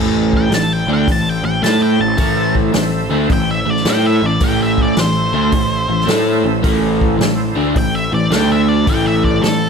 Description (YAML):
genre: blues rock power trio and southern rock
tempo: 108 BPM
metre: 4/4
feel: swing 66% on 8ths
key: A minor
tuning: A4 = 440 Hz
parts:
  - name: overdriven tonewheel organ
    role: sustained chords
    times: 0.0-9.7 s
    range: D4 to F5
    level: -27 LUFS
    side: right 5 dB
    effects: slow rotary speaker, chorus vibrato
  - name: crunchy overdriven guitar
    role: riff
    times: 0.0-9.7 s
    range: A2 to A4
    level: -16 LUFS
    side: equal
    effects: none
  - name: fuzz picked electric bass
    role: bass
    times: 0.0-9.7 s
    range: A1 to A2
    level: -21 LUFS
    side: left 1 dB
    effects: overdrive
  - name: vintage drum kit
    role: drums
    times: 0.3-9.6 s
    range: hi-hat, kick drum, snare drum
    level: -20 LUFS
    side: equal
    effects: none
  - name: octave-fuzz lead guitar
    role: melody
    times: 0.4-9.7 s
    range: A4 to A5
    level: -20 LUFS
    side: equal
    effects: distortion
room: light reverb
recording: none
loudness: -13 LUFS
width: side -6 dB against mid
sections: 0.0-9.7 A section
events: none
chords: 0.0 Am; 8.3 D5; 8.9 Am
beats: 0.52 1.07 1.62 | 2.18 2.73 3.29 3.85 | 4.40 4.96 5.52 6.07 | 6.63 7.19 7.75 8.31 | 8.86 9.42